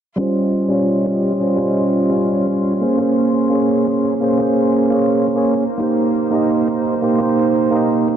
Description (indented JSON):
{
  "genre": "liquid drum and bass",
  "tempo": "171 BPM",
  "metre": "4/4",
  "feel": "swing 54% on 16ths",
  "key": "unclear",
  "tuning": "A4 = 439 Hz",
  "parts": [
    { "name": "bright tine electric piano", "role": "accompaniment", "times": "0.2-8.2 s", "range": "G3 to Eb5", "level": "-15 LUFS", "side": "right 1 dB", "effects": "low-pass filter, ping-pong delay" },
    { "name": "bright chamber string section", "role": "sustained chords", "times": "0.2-8.2 s", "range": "Bb3 to C6", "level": "-25 LUFS", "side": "right 1 dB", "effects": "sidechain pumping" },
    { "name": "electronic hi-hat", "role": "drums", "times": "0.2-8.2 s", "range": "none", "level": "-53 LUFS", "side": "left 1 dB", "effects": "none" },
    { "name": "electronic kick drum", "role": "drums", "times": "0.2-8.2 s", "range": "none", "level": "-34 LUFS", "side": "right 1 dB", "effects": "none" }
  ],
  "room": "light reverb, digital ambience",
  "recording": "low-pass filter",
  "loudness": "-14 LUFS",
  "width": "side -9 dB against mid",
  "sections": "0.2-8.2 A section",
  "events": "filter sweep on tine electric piano 0.2-8.2; filter sweep 0.2-8.2",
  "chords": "0.2 Eb13; 2.8 Bbm9; 5.6 Cm7",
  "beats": "| 0.19 0.54 0.89 1.24 | 1.59 1.94 2.29 2.64 | 2.99 3.34 3.69 4.04 | 4.40 4.75 5.10 5.45 | 5.80 6.15 6.50 6.85 | 7.20 7.55 7.91"
}